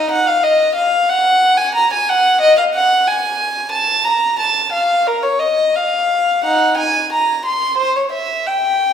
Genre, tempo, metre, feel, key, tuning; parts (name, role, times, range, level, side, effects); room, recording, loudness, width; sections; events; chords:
classical, baroque-style suite movement for unaccompanied violin; 89 BPM; 4/4; rubato; Bb minor; A4 = 440 Hz
warm violin; solo; 0.0-8.9 s; Eb4 to C6; -13 LUFS; equal
wet stone room reverb, RT60 1.3 s; heard from further back in the room; -13 LUFS; side -8 dB against mid
0.0-8.9 A section